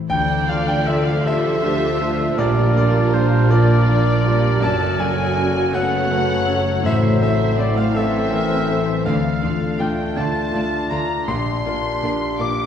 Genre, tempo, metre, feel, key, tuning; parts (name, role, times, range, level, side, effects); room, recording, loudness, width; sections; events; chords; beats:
cinematic, emotional film score for orchestra; 54 BPM (dotted quarters); 6/8; rubato; D minor; A4 = 439 Hz
clear concert grand piano; accompaniment; 0.0-12.7 s; Bb1 to D6; -24 LUFS; equal
concert harp; arpeggios; 0.0-12.7 s; F#2 to C5; -27 LUFS; left 5 dB
dark studio violin section; melody; 0.1-12.7 s; C5 to D6; -28 LUFS; left 3 dB
clear oboe; second line; 0.1-12.7 s; C5 to D6; -28 LUFS; right 1 dB
dark studio violin section; second line; 0.1-12.5 s; F4 to D5; -28 LUFS; left 2 dB
warm chamber viola section; accompaniment; 0.1-12.5 s; E3 to A4; -26 LUFS; equal
mellow French horn section; sustained chords; 0.1-12.7 s; C#3 to D4; -28 LUFS; left 1 dB
dark studio cello section; bass; 0.1-12.5 s; F#2 to D3; -27 LUFS; right 2 dB
dark studio double bass section; bass; 0.1-12.5 s; F#1 to D2; -22 LUFS; right 2 dB
clear clarinet; second line; 1.3-12.7 s; F4 to C#5; -29 LUFS; left 1 dB
timpani; percussion; 6.8-7.9 s; A2; -26 LUFS; left 1 dB
wet scoring stage reverb, RT60 1.8 s; heard from further back in the room, faint mains hum; -16 LUFS; side -8 dB against mid
0.1-12.7 A section
0.1 Dm; 2.4 Bb; 4.6 F#m; 6.8 Am; 9.1 Dm; 11.3 Bb
| 0.11 1.25 | 2.38 3.50 | 4.62 5.74 | 6.84 7.95 | 9.06 10.17 | 11.28 12.40